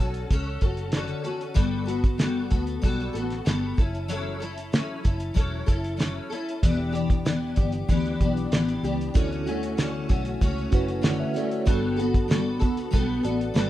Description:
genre	indie pop, bedroom pop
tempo	95 BPM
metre	4/4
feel	straight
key	D major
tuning	A4 = 441 Hz
part	picked steel-string acoustic guitar	accompaniment	0.0-13.7 s	D3 to A4	-27 LUFS	left 2 dB	ensemble chorus, warbly pitch drift, plate reverb
part	vintage muted picked electric bass	bass	0.0-13.7 s	E1 to D2	-31 LUFS	equal	none
part	cloth-damped thuddy drum kit	drums	0.1-13.7 s	hi-hat, kick drum, snare drum	-23 LUFS	equal	vintage 12-bit sampler grit
part	mellow tine electric piano	accompaniment	9.1-13.7 s	B3 to F#5	-30 LUFS	right 4 dB	medium stereo tremolo, cassette tape, plate reverb
room	moderate small room reverb, RT60 0.5 s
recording	rough home demo mix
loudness	-23 LUFS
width	side -14 dB against mid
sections	0.0-13.7 A section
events	none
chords	0.0 Dmaj7; 1.6 Gmaj9; 3.8 F#m7; 6.6 Em7; 9.2 Dmaj7; 11.7 Gmaj9

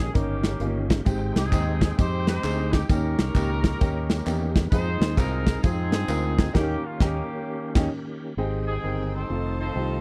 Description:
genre	uptempo gospel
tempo	131 BPM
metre	4/4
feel	swing 64% on 8ths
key	Ab major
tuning	A4 = 440 Hz
part	clear horn section	melody	0.0-10.0 s	Bb3 to C5	-34 LUFS	equal	none
part	clear upright piano	accompaniment	0.0-10.0 s	Ab2 to Bb4	-33 LUFS	equal	none
part	bright tonewheel organ	sustained chords	0.0-10.0 s	Eb3 to G5	-37 LUFS	equal	none
part	fingered electric bass	bass	0.0-10.0 s	F1 to G2	-30 LUFS	equal	none
part	modern studio drum kit	drums	0.2-7.9 s	crash cymbal, hi-hat, kick drum, snare drum	-26 LUFS	equal	none
part	tambourine and handclaps	percussion	1.1-6.5 s	none	-44 LUFS	equal	none
part	clear studio string section	sustained chords	8.4-10.0 s	Ab4 to A5	-44 LUFS	equal	none
room	small room ambience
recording	none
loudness	-25 LUFS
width	mono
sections	0.0-8.4 A section; 8.4-10.0 B section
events	band accent 6.5-8.4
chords	0.0 Eb7; 1.1 Abmaj7; 2.9 Eb7; 4.7 Fm7; 6.5 Eb7; 8.4 Abmaj7; 9.3 F7

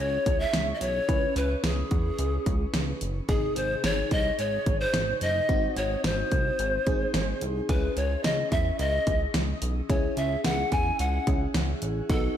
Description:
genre	synth-pop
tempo	109 BPM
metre	4/4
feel	straight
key	C# minor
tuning	A4 = 440 Hz
part	breathy pan flute	melody	0.0-12.4 s	G#4 to G#5	-28 LUFS	equal	slapback echo, shimmer reverb
part	FM electric piano	accompaniment	0.0-12.4 s	B#2 to B4	-34 LUFS	left 2 dB	chorus, phaser, shimmer reverb, slapback echo
part	chorused synth bass	bass	0.0-12.3 s	F#1 to E2	-30 LUFS	equal	none
part	pop drum kit	drums	0.3-12.2 s	hi-hat, kick drum, snare drum	-28 LUFS	equal	none
room	moderate recital hall reverb, RT60 1.4 s, digital ambience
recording	big arena sound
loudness	-24 LUFS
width	side -10 dB against mid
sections	0.0-12.4 A section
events	none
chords	0.0 C#m; 3.3 G#; 7.7 C#m

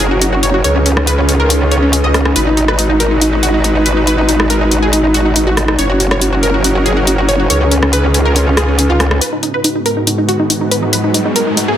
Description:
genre	heavy wobble dubstep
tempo	140 BPM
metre	4/4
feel	half-time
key	G# dorian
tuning	A4 = 444 Hz
part	wide unison pluck	melody	0.0-11.8 s	C#4 to D#5	-15 LUFS	equal	digital delay
part	supersaw pad	sustained chords	0.0-11.8 s	G#2 to B4	-19 LUFS	right 1 dB	low-pass filter
part	growl bass	bass	0.0-9.2 s	F#1 to C#2	-13 LUFS	equal	chorus, overdrive
part	dubstep drum kit	drums	0.0-11.7 s	hi-hat, rim click	-16 LUFS	left 1 dB	soft clipping on snare
part	riser	sound effects	9.9-11.8 s	none	-22 LUFS	right 2 dB	none
room	light reverb, digital ambience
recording	dense, heavily limited modern master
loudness	-10 LUFS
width	side -10 dB against mid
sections	0.0-9.2 A section; 9.2-11.8 B section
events	build-up 9.2-11.8; riser 9.9-11.8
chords	0.0 F#6; 0.6 C#add9; 2.4 G#m7; 5.8 F#6; 7.5 C#add9; 9.2 G#m7

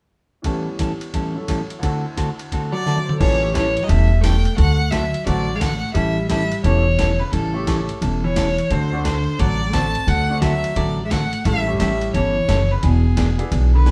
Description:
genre	country, western swing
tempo	175 BPM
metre	4/4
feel	swing 63% on 8ths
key	A major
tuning	A4 = 440 Hz
part	bright upright piano	accompaniment	0.4-13.5 s	D2 to A5	-32 LUFS	equal	none
part	hollow-body jazz guitar	accompaniment	0.4-13.9 s	A2 to A4	-28 LUFS	equal	none
part	boom bap sampler-style drum kit	drums	0.4-13.9 s	crash cymbal, hi-hat, kick drum, ride cymbal, snare drum, toms	-28 LUFS	equal	none
part	rich fiddle	melody	2.7-13.9 s	G#4 to A5	-26 LUFS	equal	none
part	vintage hollow-body jazz guitar	second line	2.7-13.9 s	B2 to C4	-29 LUFS	equal	none
part	upright bass	bass	3.2-13.9 s	E1 to D2	-22 LUFS	equal	none
room	moderate studio reverb, RT60 0.8 s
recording	band playing live in one room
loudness	-19 LUFS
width	mono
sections	0.4-3.2 A section; 3.2-13.9 B section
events	drum fill 2.9-3.2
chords	0.4 A7; 1.8 D7; 3.2 A7; 4.6 D7; 6.0 A7; 8.7 D7; 11.5 A7; 12.8 E7

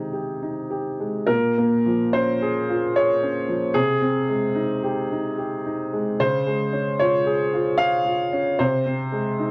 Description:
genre	neoclassical minimalist piano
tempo	74 BPM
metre	3/4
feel	rubato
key	Ab major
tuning	A4 = 443 Hz
part	warm upright piano	solo	0.0-9.5 s	Bb2 to F5	-22 LUFS	equal	none
room	light reverb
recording	dark, warm production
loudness	-22 LUFS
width	mono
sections	0.0-1.3 A section; 1.3-9.5 B section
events	none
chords	0.0 Abmaj7/C; 1.3 Bbm7; 3.7 Abmaj7/C; 6.2 Dbmaj7; 8.6 Ab/C

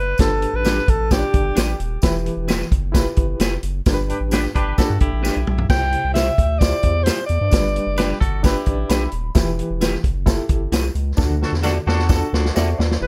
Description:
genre	uptempo 1960s-style soul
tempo	131 BPM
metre	4/4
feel	straight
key	G major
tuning	A4 = 444 Hz
part	warm alto saxophone	melody	0.0-1.8, 5.7-8.2, 13.0-13.1 s	G4 to G5	-25 LUFS	equal	tape echo
part	round analog bass	bass	0.0-13.1 s	Eb1 to G2	-24 LUFS	equal	none
part	barky reed electric piano	accompaniment	0.2-13.1 s	G2 to B5	-29 LUFS	equal	overdrive, fast tremolo
part	vintage drum kit	drums	0.2-13.0 s	crash cymbal, hi-hat, kick drum, snare drum, toms	-22 LUFS	equal	none
part	tambourine	percussion	0.2-12.7 s	none	-37 LUFS	equal	none
part	electric guitar through a small old amp	stabs	0.6-12.7 s	D4 to D5	-28 LUFS	equal	none
part	warm horn section	second line	4.1-4.9, 11.4-12.2 s	D4 to B4	-29 LUFS	equal	none
part	direct-recorded clean electric guitar	riff	4.6-9.1, 11.9-13.0 s	D4 to B4	-32 LUFS	equal	none
room	little or no reverb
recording	none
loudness	-19 LUFS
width	mono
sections	0.0-13.0 A section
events	band accent 3.9-5.7, 11.2-13.0; drum fill 5.2-5.7, 11.2-13.0; reed electric piano fill 8.4-9.4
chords	0.2 G; 2.0 Em; 3.9 G; 5.7 C; 7.5 G; 9.4 Em; 11.2 D

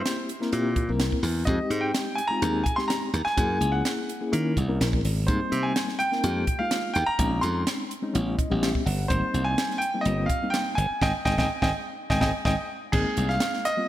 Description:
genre	electric jazz fusion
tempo	126 BPM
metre	4/4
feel	straight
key	Ab major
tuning	A4 = 440 Hz
part	bright grand piano	melody	0.0-13.9 s	Ab4 to C6	-27 LUFS	right 1 dB	none
part	reed electric piano	accompaniment	0.0-13.9 s	G3 to Gb5	-30 LUFS	left 2 dB	fast tremolo
part	crisp fusion drum kit	drums	0.1-13.8 s	crash cymbal, hi-hat, kick drum, snare drum	-29 LUFS	equal	none
part	glassy slap bass	bass	0.5-13.4 s	G1 to Eb3	-26 LUFS	equal	none
room	moderate lush hall reverb, RT60 1.7 s, small room ambience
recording	bright 1980s-style digital production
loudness	-23 LUFS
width	side -13 dB against mid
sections	0.0-12.9 A section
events	reed electric piano fill 8.1-9.1; band accent 11.0-12.9; drum fill 12.0-12.9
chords	0.0 C7; 1.5 Fm9; 3.4 Gb9; 5.3 Abmaj9; 6.2 Fm11; 7.2 Bbm11; 8.1 A9; 9.1 Abmaj7; 12.9 Ab

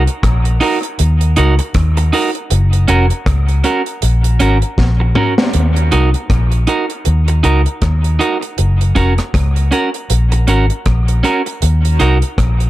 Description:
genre	dub reggae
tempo	79 BPM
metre	4/4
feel	swing 59% on 16ths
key	Eb dorian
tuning	A4 = 440 Hz
part	electric guitar at the edge of break-up	accompaniment	0.0-12.2 s	Db4 to Bb4	-17 LUFS	right 3 dB	dub echo
part	vintage muted fingered electric bass	bass	0.0-12.7 s	F1 to Eb2	-12 LUFS	equal	none
part	deep reggae drum kit	drums	0.1-12.7 s	hi-hat, kick drum, rim click, snare drum, toms	-19 LUFS	equal	none
room	light reverb, small room ambience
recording	none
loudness	-11 LUFS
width	side -15 dB against mid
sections	0.0-5.5 A section; 5.5-12.7 B section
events	drum fill 4.8-5.5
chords	0.0 Ebm; 2.5 Gb; 5.5 Ebm; 8.6 Gb; 11.6 Ebm

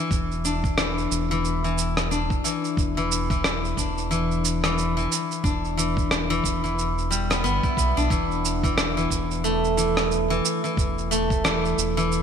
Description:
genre	organic downtempo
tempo	90 BPM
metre	4/4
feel	swing 59% on 16ths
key	unclear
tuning	A4 = 441 Hz
part	steel-string zither	arpeggios	0.0-12.2 s	E3 to E4	-24 LUFS	left 2 dB	ping-pong delay
part	round analog bass	bass	0.1-12.2 s	E1 to B1	-28 LUFS	equal	sidechain pumping
part	electronic cabasa and rim click	drums	0.1-12.2 s	none	-28 LUFS	right 2 dB	gated reverb
part	electronic kick drum	drums	0.1-11.4 s	none	-26 LUFS	equal	none
room	moderate plate reverb, RT60 3.4 s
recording	bright 1980s-style digital production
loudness	-21 LUFS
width	side -7 dB against mid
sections	0.0-12.2 A section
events	none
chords	0.0 G/E; 8.1 E5

